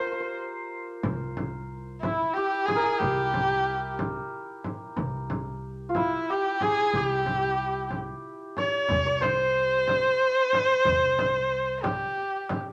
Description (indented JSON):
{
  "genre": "Persian modal ensemble",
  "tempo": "61 BPM (dotted quarters)",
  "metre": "6/8",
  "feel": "straight",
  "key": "C dastgah homayun",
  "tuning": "A4 = 439 Hz",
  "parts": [
    { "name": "clear kamancheh", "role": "melody", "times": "0.0-12.6 s", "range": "E4 to Db5+47c", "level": "-27 LUFS", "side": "equal", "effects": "none" },
    { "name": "santur", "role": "second line", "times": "0.0-12.7 s", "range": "E4 to Db5+45c", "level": "-34 LUFS", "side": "equal", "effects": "none" },
    { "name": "upright bass", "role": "bass", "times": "1.0-12.0 s", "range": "C2", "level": "-39 LUFS", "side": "equal", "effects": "none" },
    { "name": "frame drum", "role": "percussion", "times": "1.0-12.7 s", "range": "none", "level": "-36 LUFS", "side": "equal", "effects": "none" },
    { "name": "tombak", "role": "percussion", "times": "8.9-12.6 s", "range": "none", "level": "-39 LUFS", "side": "equal", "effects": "none" }
  ],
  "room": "moderate studio reverb, RT60 0.8 s",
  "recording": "none",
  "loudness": "-26 LUFS",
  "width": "mono",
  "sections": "0.0-1.0 A section; 1.0-12.7 B section",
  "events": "break 0.0-1.0",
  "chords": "none"
}